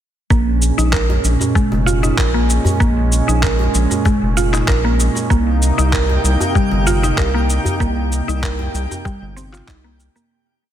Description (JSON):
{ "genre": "organic downtempo", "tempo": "96 BPM", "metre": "4/4", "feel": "straight", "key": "Bb dorian", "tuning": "A4 = 442 Hz", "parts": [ { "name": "warm analog pad", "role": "sustained chords", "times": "0.3-10.3 s", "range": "Bb2 to Eb4", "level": "-22 LUFS", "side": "right 2 dB", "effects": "chorus, sidechain pumping" }, { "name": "mallet-like synth pluck", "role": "arpeggios", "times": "0.3-10.3 s", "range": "G3 to Bb4", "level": "-20 LUFS", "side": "right 2 dB", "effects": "chorus, digital delay" }, { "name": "round analog bass", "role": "bass", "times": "0.3-10.1 s", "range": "F1 to C2", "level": "-17 LUFS", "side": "equal", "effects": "sidechain pumping" }, { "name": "electronic cabasa and handclaps", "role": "drums", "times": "0.3-10.3 s", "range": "none", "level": "-24 LUFS", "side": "equal", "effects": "small room ambience, soft clipping on snare" }, { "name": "electronic kick drum", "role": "drums", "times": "0.3-9.8 s", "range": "none", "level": "-17 LUFS", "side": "equal", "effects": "small room ambience" }, { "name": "djembe", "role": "percussion", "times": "1.1-10.3 s", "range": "none", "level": "-24 LUFS", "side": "left 1 dB", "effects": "none" }, { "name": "twinkling granular texture", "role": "texture", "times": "5.5-10.3 s", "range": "G4 to G5", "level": "-27 LUFS", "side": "left 2 dB", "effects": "built-in reverb" } ], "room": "light reverb", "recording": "dense, heavily limited modern master", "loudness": "-14 LUFS", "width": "side -10 dB against mid", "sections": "0.3-10.3 groove", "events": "fade-out 7.0-10.3", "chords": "0.3 Bbm7; 5.3 Cm7" }